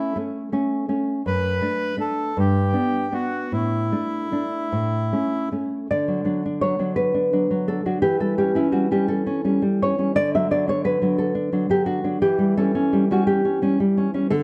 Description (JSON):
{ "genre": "romantic duo for bandoneon and classical guitar", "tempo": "49-59 BPM (dotted quarters)", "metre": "6/8", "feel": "rubato", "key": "D major", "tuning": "A4 = 440 Hz", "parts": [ { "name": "bandoneon", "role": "melody", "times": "0.0-5.5 s", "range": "E4 to B4", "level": "-28 LUFS", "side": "equal", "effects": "none" }, { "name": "nylon-string guitar", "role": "accompaniment", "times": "0.0-14.4 s", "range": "F#2 to E5", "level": "-22 LUFS", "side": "equal", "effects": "none" } ], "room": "moderate recital hall reverb, RT60 1.6 s", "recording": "dark, warm production", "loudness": "-22 LUFS", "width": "mono", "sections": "0.0-5.9 A section; 5.9-14.4 B section", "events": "none", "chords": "0.0 A; 1.2 D/F#; 2.4 G; 3.5 Asus4; 4.7 A; 5.9 D; 8.1 A7/E; 10.2 D; 12.2 C#dim/E" }